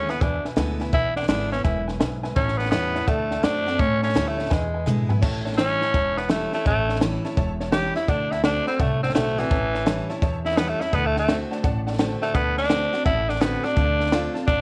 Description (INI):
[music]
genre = rockabilly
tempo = 168 BPM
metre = 4/4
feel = swing 65% on 8ths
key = unclear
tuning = A4 = 440 Hz
[part]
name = raspy tenor saxophone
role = melody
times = 0.0-14.6 s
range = E3 to G4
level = -27 LUFS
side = equal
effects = none
[part]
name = picked steel-string acoustic guitar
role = accompaniment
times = 0.0-14.6 s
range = E2 to F#4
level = -32 LUFS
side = equal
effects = none
[part]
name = upright bass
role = bass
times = 0.0-14.6 s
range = E1 to A2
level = -30 LUFS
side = equal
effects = none
[part]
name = honky-tonk upright piano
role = accompaniment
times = 0.1-14.6 s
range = B4 to B5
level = -36 LUFS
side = equal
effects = none
[part]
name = compact cocktail drum kit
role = drums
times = 0.1-14.6 s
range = crash cymbal, hi-hat, kick drum, snare drum, toms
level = -27 LUFS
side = equal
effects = none
[sound]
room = light reverb, small room ambience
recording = none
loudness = -23 LUFS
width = mono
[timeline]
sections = 0.0-5.2 A section; 5.2-14.6 B section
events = drum fill 4.5-5.2; tenor saxophone solo 5.2-14.6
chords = 0.0 E7; 2.4 A7; 3.1 D7; 3.8 A7; 4.5 E7; 5.2 A7; 8.1 D7; 9.5 A7; 10.9 D7; 13.8 Dm7